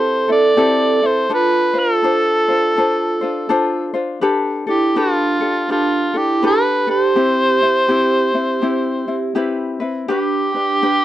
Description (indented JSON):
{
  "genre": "Hawaiian",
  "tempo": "82 BPM",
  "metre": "4/4",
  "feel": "swing 61% on 8ths",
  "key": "C major",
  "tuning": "A4 = 441 Hz",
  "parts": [
    { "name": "warm cor anglais", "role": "melody", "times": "0.0-11.0 s", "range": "F4 to D5", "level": "-17 LUFS", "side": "equal", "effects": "none" },
    { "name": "vibraphone with soft mallets", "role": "second line", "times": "0.0-11.0 s", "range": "D4 to A4", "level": "-20 LUFS", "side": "right 5 dB", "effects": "none" },
    { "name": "ukulele", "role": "accompaniment", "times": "0.0-11.0 s", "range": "C4 to C5", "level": "-20 LUFS", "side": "left 3 dB", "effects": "none" }
  ],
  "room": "moderate booth ambience, RT60 0.3 s",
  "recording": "dry, close 1970s-style studio recording",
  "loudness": "-14 LUFS",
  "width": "side -13 dB against mid",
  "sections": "0.0-10.1 A section",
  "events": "none",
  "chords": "0.0 Am7; 1.3 Dm7; 4.2 Gadd9; 7.2 Cmaj7; 10.1 G"
}